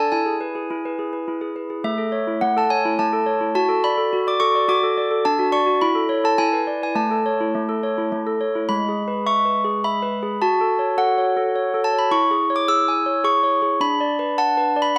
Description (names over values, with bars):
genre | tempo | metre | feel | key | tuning
classical, lullaby for handbells | 105 BPM | 3/4 | straight | A major | A4 = 441 Hz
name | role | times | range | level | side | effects
handbells | solo | 0.0-15.0 s | G#3 to E6 | -20 LUFS | equal | none
room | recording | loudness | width
moderate spring reverb, RT60 1.7 s | none | -20 LUFS | mono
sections
0.0-8.7 A section; 8.7-15.0 B section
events
none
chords
0.1 E; 1.8 A; 3.5 D/F#; 5.2 D; 5.8 A/E; 6.4 E7; 7.0 A; 8.7 E/G#; 10.4 F#m; 12.1 C#m/E; 13.8 Bm/D